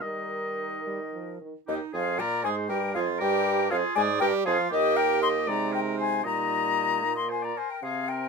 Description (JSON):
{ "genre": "quick classical-period movement for wind quintet", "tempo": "72-81 BPM (dotted quarters)", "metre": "6/8", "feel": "rubato", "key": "Eb major", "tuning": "A4 = 441 Hz", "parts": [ { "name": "mellow silver concert flute", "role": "melody", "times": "0.0-8.3 s", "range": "Bb4 to C6", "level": "-28 LUFS", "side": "left 9 dB", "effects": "none" }, { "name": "clear oboe", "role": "second line", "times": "0.0-8.3 s", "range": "G4 to Eb5", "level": "-32 LUFS", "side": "left 1 dB", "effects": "none" }, { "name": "bright clarinet", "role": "accompaniment", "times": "0.0-8.3 s", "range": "C4 to Bb4", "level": "-32 LUFS", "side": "right 8 dB", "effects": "none" }, { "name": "mellow French horn", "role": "accompaniment", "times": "0.0-8.3 s", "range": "Eb3 to C4", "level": "-33 LUFS", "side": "right 3 dB", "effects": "none" }, { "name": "mellow bassoon", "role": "bass", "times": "0.0-8.3 s", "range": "Eb2 to Eb3", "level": "-32 LUFS", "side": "right 4 dB", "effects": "none" } ], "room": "light reverb", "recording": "minimal, uncompressed stereo recording", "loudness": "-24 LUFS", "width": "side -4 dB against mid", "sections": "0.0-1.7 A section; 1.7-8.3 B section", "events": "none", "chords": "0.0 Eb; 3.2 Bb5; 4.7 Eb; 5.5 Ab/C; 6.2 Eb/Bb; 7.0 Bb5", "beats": "| 0.03 0.85 | 1.67 2.44 | 3.21 3.96 | 4.72 5.48 | 6.25 7.03 | 7.82" }